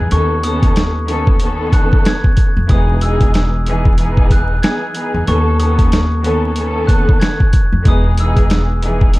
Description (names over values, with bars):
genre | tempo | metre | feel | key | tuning
hip hop, boom-bap hip-hop | 93 BPM | 4/4 | swing 58% on 16ths | E major | A4 = 440 Hz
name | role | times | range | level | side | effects
warm studio string section | accompaniment | 0.0-9.2 s | D#3 to A4 | -19 LUFS | equal | cassette tape, high-pass filter, low-pass filter
upright bass | bass | 0.0-9.2 s | E1 to F2 | -16 LUFS | equal | none
glockenspiel with hard plastic mallets | melody | 0.1-9.2 s | C#6 to G#6 | -24 LUFS | left 1 dB | high-pass filter, low-pass filter, tape echo
boom bap sampler-style drum kit | drums | 0.1-9.2 s | hi-hat, kick drum, snare drum | -13 LUFS | equal | none
room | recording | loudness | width
small room reverb | dark, warm production, vinyl crackle | -11 LUFS | side -20 dB against mid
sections
0.0-9.2 A section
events
none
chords
0.1 B7/D#; 2.7 Emaj7; 5.3 B7/D#; 7.9 Emaj7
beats
| 0.11 0.76 1.40 2.05 | 2.69 3.34 3.98 4.63 | 5.28 5.92 6.57 7.21 | 7.86 8.50 9.15